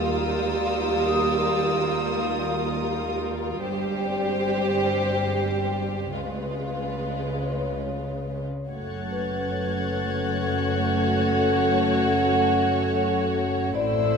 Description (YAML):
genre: cinematic, suspense film score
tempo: 71 BPM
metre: 3/4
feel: straight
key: F# minor from 8.7 s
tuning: A4 = 441 Hz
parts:
  - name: dark studio violin section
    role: melody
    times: 0.0-14.2 s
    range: Bb4 to C#5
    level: -32 LUFS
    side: left 3 dB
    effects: none
  - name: warm studio violin section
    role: second line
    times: 0.0-14.2 s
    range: E4 to G4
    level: -28 LUFS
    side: equal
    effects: none
  - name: warm studio viola section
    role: accompaniment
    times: 0.0-14.2 s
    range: G3 to A3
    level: -28 LUFS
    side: right 2 dB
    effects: none
  - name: dark studio cello section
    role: bass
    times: 0.0-14.2 s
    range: Eb2 to C#3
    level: -31 LUFS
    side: right 1 dB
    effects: none
  - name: dark studio double bass section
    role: bass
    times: 0.0-14.2 s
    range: F#1 to Eb2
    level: -34 LUFS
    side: right 3 dB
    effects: none
  - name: dark studio violin section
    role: texture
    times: 0.0-3.2, 8.7-14.2 s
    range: C6 to A6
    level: -34 LUFS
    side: left 4 dB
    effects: none
  - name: vibraphone with medium hard mallets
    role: texture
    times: 1.1-14.2 s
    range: C4 to Eb6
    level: -33 LUFS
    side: left 4 dB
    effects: none
  - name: mellow French horn section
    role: sustained chords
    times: 8.7-14.2 s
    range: A3 to C#4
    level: -28 LUFS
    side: left 1 dB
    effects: none
room: wet concert hall reverb, RT60 2.0 s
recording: minimal, uncompressed stereo recording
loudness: -22 LUFS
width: side -6 dB against mid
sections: 0.0-8.7 A section; 8.7-14.2 B section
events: none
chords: 0.0 Ebadd9; 3.6 Gsus4; 6.2 C#7; 8.7 F#m